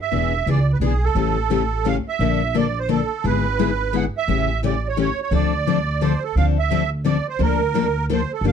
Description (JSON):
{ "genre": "acoustic string swing (jazz manouche)", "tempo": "173 BPM", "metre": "3/4", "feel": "swing 60% on 8ths", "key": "D minor", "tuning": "A4 = 440 Hz", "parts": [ { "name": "musette accordion", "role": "melody", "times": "0.0-8.5 s", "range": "G#4 to F#5", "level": "-24 LUFS", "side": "right 9 dB", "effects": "none" }, { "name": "picked steel-string acoustic guitar", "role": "accompaniment", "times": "0.1-8.5 s", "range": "C#3 to A4", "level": "-22 LUFS", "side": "left 8 dB", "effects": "none" }, { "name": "upright bass", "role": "bass", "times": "0.1-8.5 s", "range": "E1 to D2", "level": "-22 LUFS", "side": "right 1 dB", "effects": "none" } ], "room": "light reverb", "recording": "dark, warm production", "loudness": "-18 LUFS", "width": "side -7 dB against mid", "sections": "0.0-6.4 A section; 6.4-8.5 B section", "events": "none", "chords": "0.1 E7; 1.2 A7; 2.2 Bbmaj7; 3.2 E7/G#; 4.3 A7; 5.3 Dm7; 7.4 Bbmaj7/D", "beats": "| 0.12 0.46 0.81 | 1.16 1.50 1.85 | 2.19 2.54 2.89 | 3.23 3.58 3.92 | 4.27 4.62 4.96 | 5.31 5.66 6.00 | 6.35 6.70 7.04 | 7.39 7.74 8.08 | 8.43" }